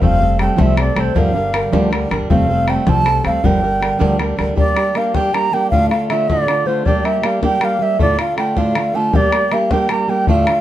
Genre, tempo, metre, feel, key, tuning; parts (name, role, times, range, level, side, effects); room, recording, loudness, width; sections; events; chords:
celtic folk, Celtic jig; 105 BPM (dotted quarters); 6/8; straight; G minor; A4 = 436 Hz
baroque flute; melody; 0.0-10.6 s; C5 to Bb5; -18 LUFS; right 1 dB; plate reverb
fingerpicked plugged-in swing-style acoustic guitar; accompaniment; 0.0-10.6 s; D2 to Bb4; -18 LUFS; right 2 dB
upright bass; bass; 0.0-4.5 s; F1 to D2; -19 LUFS; left 1 dB
bodhran; percussion; 0.0-10.6 s; -20 LUFS; left 2 dB
moderate studio reverb, RT60 0.6 s; -13 LUFS; side -13 dB against mid
0.0-4.6 A section; 4.6-10.6 B section
0.0 Fadd9; 1.2 Gm7; 2.3 Fadd9; 3.4 Gm7; 4.6 Gm; 5.7 Dm; 6.9 Gm; 8.0 Dm; 9.1 Gm